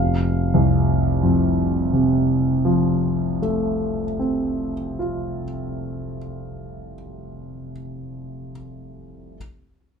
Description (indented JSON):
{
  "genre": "classical, impressionist solo piano",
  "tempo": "25 BPM (dotted quarters)",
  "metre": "9/8",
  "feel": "rubato",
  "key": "F major",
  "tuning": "A4 = 440 Hz",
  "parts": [
    { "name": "warm concert grand piano", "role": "solo", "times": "0.0-9.4 s", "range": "F1 to F5", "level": "-20 LUFS", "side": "equal", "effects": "none" }
  ],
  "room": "light reverb",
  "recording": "none",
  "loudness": "-19 LUFS",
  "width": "side -6 dB against mid",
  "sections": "0.0-7.2 A section",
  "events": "none",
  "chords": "0.0 F",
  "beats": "2.33 4.76"
}